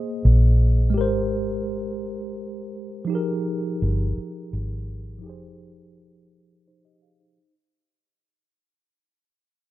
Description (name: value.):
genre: R&B.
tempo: 56 BPM (dotted quarters).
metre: 6/8.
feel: straight.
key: F minor.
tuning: A4 = 440 Hz.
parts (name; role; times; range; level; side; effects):
mellow tine electric piano; accompaniment; 0.0-7.5 s; F3 to F5; -27 LUFS; equal; medium stereo tremolo, low-pass filter.
vintage muted fingered electric bass; bass; 0.2-7.3 s; F1 to Bb1; -19 LUFS; equal; none.
room: little or no reverb.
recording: none.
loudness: -21 LUFS.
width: side -15 dB against mid.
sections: 0.0-7.4 A section.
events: fade-out 0.0-7.4; filter sweep on tine electric piano 0.0-7.4.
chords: 0.0 Bb9sus4; 0.9 Abmaj9; 3.1 Fm11.